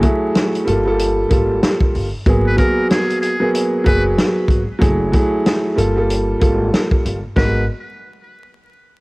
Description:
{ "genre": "hip hop, boom-bap hip-hop", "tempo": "94 BPM", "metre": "4/4", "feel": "swing 61% on 16ths", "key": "unclear", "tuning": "A4 = 440 Hz", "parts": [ { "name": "dark upright piano", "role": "accompaniment", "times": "0.0-7.6 s", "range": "F#3 to A#4", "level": "-17 LUFS", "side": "right 1 dB", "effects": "cassette tape" }, { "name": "vintage drum kit", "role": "drums", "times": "0.0-7.6 s", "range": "hi-hat, kick drum, snare drum", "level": "-17 LUFS", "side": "equal", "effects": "cassette tape" }, { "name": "upright bass", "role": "bass", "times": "0.7-7.7 s", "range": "F#1 to G#1", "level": "-20 LUFS", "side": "equal", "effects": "none" }, { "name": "trumpet with metal mute", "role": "melody", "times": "2.5-7.7 s", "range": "G#4 to B4", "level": "-25 LUFS", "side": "equal", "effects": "cassette tape, tape echo" } ], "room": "little or no reverb", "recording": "home recording on cassette, vinyl crackle", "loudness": "-14 LUFS", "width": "side -24 dB against mid", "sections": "0.0-7.4 A section; 7.4-9.0 B section", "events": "none", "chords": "0.0 F#m9; 0.7 Gm9; 2.3 G#m9; 4.8 F#m9; 5.8 Gm9; 7.4 G#m9" }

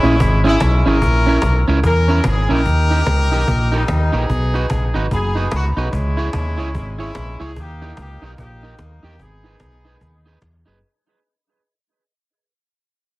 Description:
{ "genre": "ska", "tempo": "147 BPM", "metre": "4/4", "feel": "swing 60% on 8ths", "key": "G# minor", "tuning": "A4 = 441 Hz", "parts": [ { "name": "warm horn section", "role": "melody", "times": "0.0-10.4 s", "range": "G3 to A#4", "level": "-22 LUFS", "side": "left 1 dB", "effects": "plate reverb" }, { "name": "electric guitar at the edge of break-up", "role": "accompaniment", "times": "0.0-10.8 s", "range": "C#4 to C#5", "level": "-21 LUFS", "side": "right 2 dB", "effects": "tape echo, plate reverb" }, { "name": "fingered electric bass", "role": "bass", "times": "0.0-10.8 s", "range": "F#1 to E2", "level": "-18 LUFS", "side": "equal", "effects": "none" }, { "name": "cajon", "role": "drums", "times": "0.0-10.5 s", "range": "none", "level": "-24 LUFS", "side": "equal", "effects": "none" } ], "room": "light reverb", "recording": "heavily compressed radio sound, vinyl crackle", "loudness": "-14 LUFS", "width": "side -20 dB against mid", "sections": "0.0-10.8 A section", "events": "fade-out 0.0-10.8", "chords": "0.0 C#m; 2.7 D#; 4.3 B; 5.9 C#m; 7.6 D#; 9.2 G#m" }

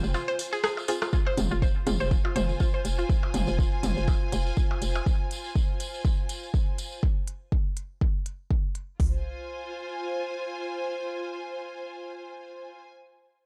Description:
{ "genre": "minimal techno", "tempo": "122 BPM", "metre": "4/4", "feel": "swing 56% on 16ths", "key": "F minor", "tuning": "A4 = 440 Hz", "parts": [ { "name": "hollow knocking FM bass", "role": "bass", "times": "0.0-5.0 s", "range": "F1", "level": "-31 LUFS", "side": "equal", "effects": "sidechain pumping" }, { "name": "tambourine", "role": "percussion", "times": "0.0-7.0 s", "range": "none", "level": "-43 LUFS", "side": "equal", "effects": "none" }, { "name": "bright symphonic string section", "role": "texture", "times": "0.0-12.9 s", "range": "F4 to Ab5", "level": "-38 LUFS", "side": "equal", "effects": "sidechain pumping" }, { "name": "mallet-like synth pluck", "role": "riff", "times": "0.1-3.0 s", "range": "F4 to C5", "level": "-34 LUFS", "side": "equal", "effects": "chorus, cassette tape, sidechain pumping, analog delay" }, { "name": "electronic percussion blips and toms", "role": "percussion", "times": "0.1-5.0 s", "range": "none", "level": "-36 LUFS", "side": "equal", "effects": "none" }, { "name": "minimal click drum kit", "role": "drums", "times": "0.4-8.9 s", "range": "hi-hat, rim click", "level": "-35 LUFS", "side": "equal", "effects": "none" }, { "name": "filtered dub chord stab", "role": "stabs", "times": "0.9-1.9 s", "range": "C4 to Ab4", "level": "-36 LUFS", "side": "equal", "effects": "chorus, analog delay" }, { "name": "minimal click drum kit", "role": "drums", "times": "1.1-9.1 s", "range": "hi-hat, kick drum, toms", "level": "-28 LUFS", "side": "equal", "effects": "none" } ], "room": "digital ambience", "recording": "dry, gritty hardware recording, cassette tape", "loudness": "-28 LUFS", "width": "mono", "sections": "0.0-1.1 A section; 1.1-9.0 B section; 9.0-12.9 C section", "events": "drop 0.0-1.1", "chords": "0.0 Fm" }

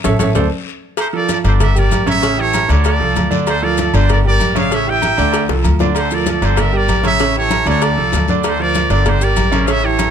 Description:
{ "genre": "latin, salsa", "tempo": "193 BPM", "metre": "4/4", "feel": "straight", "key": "D minor", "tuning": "A4 = 438 Hz", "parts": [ { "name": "clear concert grand piano", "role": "accompaniment", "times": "0.0-10.1 s", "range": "C#3 to E5", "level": "-18 LUFS", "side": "right 6 dB", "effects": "none" }, { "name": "upright bass", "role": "bass", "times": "0.0-10.1 s", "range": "G1 to D2", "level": "-17 LUFS", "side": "left 1 dB", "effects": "none" }, { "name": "congas", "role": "percussion", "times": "0.0-10.1 s", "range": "none", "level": "-22 LUFS", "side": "left 4 dB", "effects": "none" }, { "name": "cowbell and bongos", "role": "percussion", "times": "0.0-10.1 s", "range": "none", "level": "-24 LUFS", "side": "left 3 dB", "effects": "none" }, { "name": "maracas", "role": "percussion", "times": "0.0-10.1 s", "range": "none", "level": "-32 LUFS", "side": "left 7 dB", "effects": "none" }, { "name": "timbales and agogo bells", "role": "percussion", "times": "0.0-10.1 s", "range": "none", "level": "-26 LUFS", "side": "right 6 dB", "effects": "none" }, { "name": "guiro", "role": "percussion", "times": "0.1-10.1 s", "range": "none", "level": "-32 LUFS", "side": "left 10 dB", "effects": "none" }, { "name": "bright trumpet section", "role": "melody", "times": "1.0-10.1 s", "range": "G4 to G5", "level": "-18 LUFS", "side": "equal", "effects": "none" } ], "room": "little or no reverb", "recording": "close, detailed microphones", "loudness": "-12 LUFS", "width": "side -8 dB against mid", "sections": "1.0-10.1 A section", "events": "band accent 0.0-1.0; drum fill 0.0-1.0, 5.5-6.0", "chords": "0.4 D5; 1.0 Dm; 1.6 Gm; 2.2 A7; 2.8 Dm7; 4.1 Gm; 4.7 A7; 5.3 Dm7; 6.6 Gm; 7.2 A7; 7.8 Dm7; 9.1 Gm" }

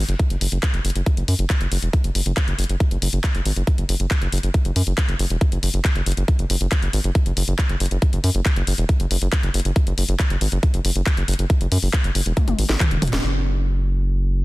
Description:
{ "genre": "psychedelic trance", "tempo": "138 BPM", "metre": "4/4", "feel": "straight", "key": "unclear", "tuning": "A4 = 440 Hz", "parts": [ { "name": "round analog bass", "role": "bass", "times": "0.0-14.4 s", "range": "E1 to F#2", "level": "-20 LUFS", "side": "equal", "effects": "none" }, { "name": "garage drum kit", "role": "drums", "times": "0.1-13.2 s", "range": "handclaps, hi-hat, snare drum, toms", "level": "-26 LUFS", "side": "left 2 dB", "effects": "studio reverb" }, { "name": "electronic kick drum", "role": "drums", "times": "0.2-12.9 s", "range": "none", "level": "-19 LUFS", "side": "equal", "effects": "studio reverb" } ], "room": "little or no reverb", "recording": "dense, heavily limited modern master", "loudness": "-18 LUFS", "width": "side -20 dB against mid", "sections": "0.0-13.2 A section; 13.2-14.4 B section", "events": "drum fill 12.4-13.2; band accent 13.1", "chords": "none" }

